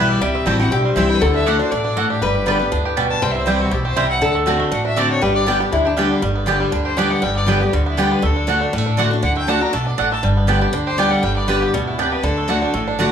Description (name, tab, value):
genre	bluegrass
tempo	239 BPM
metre	4/4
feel	swing 53% on 8ths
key	G major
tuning	A4 = 440 Hz
part	bluegrass banjo	melody	0.0-13.1 s	D3 to G4	-24 LUFS	right 4 dB	none
part	clear fiddle	melody	0.0-13.0 s	E4 to Bb5	-24 LUFS	left 2 dB	none
part	lap resonator guitar	second line	0.0-6.1 s	D4 to C5	-21 LUFS	left 3 dB	none
part	picked steel-string acoustic guitar	accompaniment	0.0-13.1 s	G2 to G4	-20 LUFS	left 2 dB	none
part	mandolin	stabs	0.0-13.1 s	A3 to A5	-22 LUFS	right 4 dB	none
part	upright bass	bass	0.0-13.1 s	G1 to D2	-23 LUFS	equal	none
room	moderate large studio reverb, RT60 0.8 s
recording	band playing live in one room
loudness	-15 LUFS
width	side -8 dB against mid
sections	0.0-6.2 A section; 6.2-13.1 B section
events	none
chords	0.2 C; 1.2 D; 2.2 G; 3.2 C; 4.2 D7; 5.2 G; 8.2 D; 10.2 G; 12.2 D